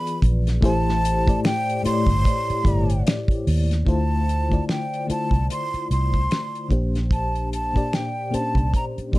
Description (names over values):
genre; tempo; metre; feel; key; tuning
R&B, neo-soul; 74 BPM; 4/4; swing 59% on 16ths; D minor; A4 = 440 Hz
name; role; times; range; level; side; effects
breathy hollow jazz flute; melody; 0.0-9.2 s; G5 to C6; -26 LUFS; right 1 dB; none
FM electric piano with tremolo; accompaniment; 0.0-9.2 s; A2 to D5; -26 LUFS; left 2 dB; none
damped 70s drum kit; drums; 0.1-9.2 s; finger snaps, hi-hat, kick drum, snare drum; -23 LUFS; equal; none
vintage muted fingered electric bass; bass; 0.2-9.2 s; G1 to Eb2; -22 LUFS; equal; none
room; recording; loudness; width
light reverb; dark, warm production; -19 LUFS; side -18 dB against mid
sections
0.0-3.9 A section; 3.9-9.2 B section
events
none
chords
0.0 E7b9; 0.6 Am7; 3.9 Dm9; 6.7 Bb69